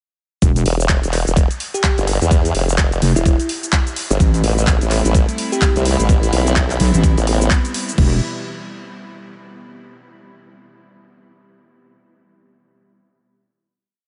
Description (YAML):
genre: bass house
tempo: 127 BPM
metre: 4/4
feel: swing 59% on 16ths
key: E phrygian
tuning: A4 = 440 Hz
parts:
  - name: wobble bass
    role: bass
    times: 0.4-8.2 s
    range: E1 to B1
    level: -17 LUFS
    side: equal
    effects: chorus, overdrive, sidechain pumping
  - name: big-room dance drum kit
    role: drums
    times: 0.4-8.1 s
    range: cabasa, crash cymbal, handclaps, hi-hat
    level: -25 LUFS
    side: equal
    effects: overdrive, studio reverb
  - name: electronic kick drum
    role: drums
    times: 0.4-8.1 s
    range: none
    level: -18 LUFS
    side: equal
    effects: overdrive, studio reverb
  - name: formant-sweep wobble bass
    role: bass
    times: 0.7-7.5 s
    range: E1 to E2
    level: -19 LUFS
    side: equal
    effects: chorus, tube saturation, sidechain pumping
  - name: bell-like FM electric piano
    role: melody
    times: 1.7-5.9 s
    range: E4 to G4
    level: -30 LUFS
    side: equal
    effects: chorus, diffuse ambient delay
  - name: dark studio string section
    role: sustained chords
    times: 4.2-8.2 s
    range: B2 to E4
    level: -27 LUFS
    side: equal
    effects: sidechain pumping
room: light reverb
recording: nothing above 10.9 kHz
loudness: -16 LUFS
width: mono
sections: 0.4-8.0 drop; 8.0-9.9 final chord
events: drop 0.4-8.0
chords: 0.4 N.C.; 4.2 Am7; 8.0 Em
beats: | 0.42 0.89 1.37 1.84 | 2.31 2.78 3.26 3.73 | 4.20 4.67 5.14 5.62 | 6.09 6.56 7.04 7.51 | 7.98